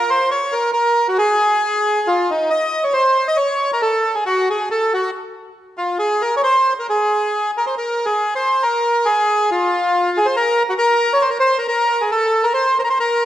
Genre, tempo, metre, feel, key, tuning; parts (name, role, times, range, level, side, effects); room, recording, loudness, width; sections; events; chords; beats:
musette; 137 BPM; 3/4; swing 54% on 8ths; A4 = 445 Hz
bandoneon; solo; 0.0-13.3 s; Eb4 to Eb5; -15 LUFS; equal
wet recital hall reverb, RT60 1.8 s; nothing above 10.4 kHz; -15 LUFS; side -12 dB against mid
0.0-7.7 A section; 7.7-13.3 B section
0.29 0.72 | 1.16 1.60 2.04 | 2.48 2.92 3.36 | 3.79 4.23 4.67 | 5.10 5.54 5.97 | 6.41 6.84 7.28 | 7.73 8.17 8.61 | 9.05 9.48 9.92 | 10.35 10.79 11.22 | 11.66 12.10 12.54 | 12.98